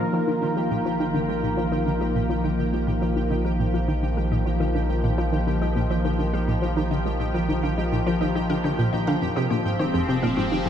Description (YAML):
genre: ambient, sequencer-driven space music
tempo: 104 BPM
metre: 4/4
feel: straight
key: unclear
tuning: A4 = 440 Hz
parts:
  - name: sweeping resonant pad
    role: sustained chords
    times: 0.0-10.7 s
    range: Eb3 to C5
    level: -25 LUFS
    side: equal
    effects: chorus, shimmer reverb
  - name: wide unison pluck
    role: arpeggios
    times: 0.0-10.7 s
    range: Eb4 to F5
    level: -38 LUFS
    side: moving between left 5 dB and right 1 dB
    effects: none
  - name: analog pluck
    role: riff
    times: 0.0-10.7 s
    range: F2 to Ab3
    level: -26 LUFS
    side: equal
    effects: chorus, ping-pong delay, shimmer reverb
  - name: round analog bass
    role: bass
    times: 0.0-10.7 s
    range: F1 to Bb1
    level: -28 LUFS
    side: equal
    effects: none
  - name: pulsing gated texture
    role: texture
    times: 0.2-10.7 s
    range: G4 to G5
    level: -34 LUFS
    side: equal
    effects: chorus, built-in reverb, shimmer reverb
room: wet concert hall reverb, RT60 1.9 s, digital ambience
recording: dark, warm production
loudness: -21 LUFS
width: side -9 dB against mid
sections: 0.0-10.7 A section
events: filter sweep on synth arpeggio sound 0.0-10.7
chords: 0.0 Bbsus4; 9.2 Fmadd9